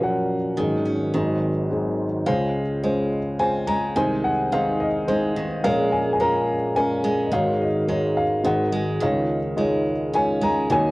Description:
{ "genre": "folk", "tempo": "107 BPM", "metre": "3/4", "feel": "straight", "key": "Db major", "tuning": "A4 = 444 Hz", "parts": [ { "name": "dark upright piano", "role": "melody", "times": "0.0-10.9 s", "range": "Ab1 to Bb5", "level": "-21 LUFS", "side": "equal", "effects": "none" }, { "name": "picked steel-string acoustic guitar", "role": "arpeggios", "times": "0.0-10.9 s", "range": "Eb3 to Db4", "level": "-27 LUFS", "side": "right 2 dB", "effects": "cassette tape" } ], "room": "moderate booth ambience, RT60 0.2 s", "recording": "home recording on cassette", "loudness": "-20 LUFS", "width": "side -20 dB against mid", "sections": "0.0-2.3 A section; 2.3-10.9 B section", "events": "none", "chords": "0.0 Gbmaj7/Bb; 0.6 Ab7sus4; 1.1 Ab7; 2.3 Dbmaj7; 3.9 Ab/C; 5.6 Bbm7; 7.3 Ab7sus4; 9.0 Dbadd9", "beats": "0.01 | 0.57 1.14 1.70 | 2.26 2.82 3.39 | 3.95 4.51 5.07 | 5.63 6.20 6.76 | 7.32 7.88 8.45 | 9.01 9.57 10.14 | 10.70" }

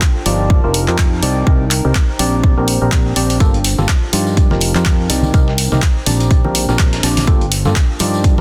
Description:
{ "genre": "piano house", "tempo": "124 BPM", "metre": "4/4", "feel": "swing 57% on 16ths", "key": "G minor", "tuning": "A4 = 440 Hz", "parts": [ { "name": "electronic kick drum", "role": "drums", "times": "0.0-8.4 s", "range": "none", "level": "-15 LUFS", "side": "equal", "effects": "none" }, { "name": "punchy analog drum machine", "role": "drums", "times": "0.0-8.1 s", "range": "handclaps, hi-hat", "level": "-22 LUFS", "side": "equal", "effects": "overdrive" }, { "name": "warbly tape-like pad", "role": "texture", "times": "0.0-8.4 s", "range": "D4 to Bb5", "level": "-29 LUFS", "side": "equal", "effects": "chorus, built-in reverb, sidechain pumping" }, { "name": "percussive organ stab", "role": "riff", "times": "0.3-8.4 s", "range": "G2 to D5", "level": "-21 LUFS", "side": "equal", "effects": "lush chorus, cassette tape, sidechain pumping, delay" }, { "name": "fingered electric bass", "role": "bass", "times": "0.3-8.4 s", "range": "F1 to G2", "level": "-21 LUFS", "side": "equal", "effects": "tube saturation, sidechain pumping" }, { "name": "dusty soul sampler-style drum kit", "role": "drums", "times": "3.4-8.4 s", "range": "hi-hat, snare drum", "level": "-30 LUFS", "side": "equal", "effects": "sidechain pumping on hats, high-pass filter on hats, high-pass filter on snare" }, { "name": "tambourine and congas", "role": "percussion", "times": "3.4-8.4 s", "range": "none", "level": "-27 LUFS", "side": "equal", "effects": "none" } ], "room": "digital ambience", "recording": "dense, heavily limited modern master", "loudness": "-14 LUFS", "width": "mono", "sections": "0.0-8.4 A section", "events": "none", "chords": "0.0 Gm9; 0.5 F9sus4; 1.2 Cm7; 2.4 Bb69; 3.4 Gm9; 4.4 F9sus4; 5.1 Cm7; 6.3 Bb69; 7.3 Gm9", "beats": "0.02 0.50 0.98 | 1.47 1.95 2.44 2.92 | 3.40 3.89 4.37 4.86 | 5.34 5.82 6.31 6.79 | 7.27 7.76 8.24" }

